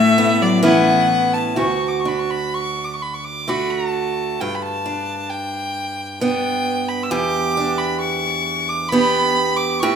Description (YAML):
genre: celtic folk, Celtic slow air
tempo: 65 BPM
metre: 3/4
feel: uneven beats, rubato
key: D major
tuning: A4 = 443 Hz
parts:
  - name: bright fiddle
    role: melody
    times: 0.0-10.0 s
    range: D5 to E6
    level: -21 LUFS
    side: left 1 dB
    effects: none
  - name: clear cello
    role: second line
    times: 0.0-1.3 s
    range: E3 to A3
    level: -19 LUFS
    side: left 6 dB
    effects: none
  - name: picked steel-string acoustic guitar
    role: accompaniment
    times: 0.0-10.0 s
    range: D2 to G4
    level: -20 LUFS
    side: right 2 dB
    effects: none
room: moderate recital hall reverb, RT60 1.7 s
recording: minimal, uncompressed stereo recording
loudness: -17 LUFS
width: side -7 dB against mid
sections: 0.0-1.6 A section; 1.6-10.0 B section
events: none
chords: 0.0 Aadd9; 1.6 D; 4.4 G; 7.1 Em7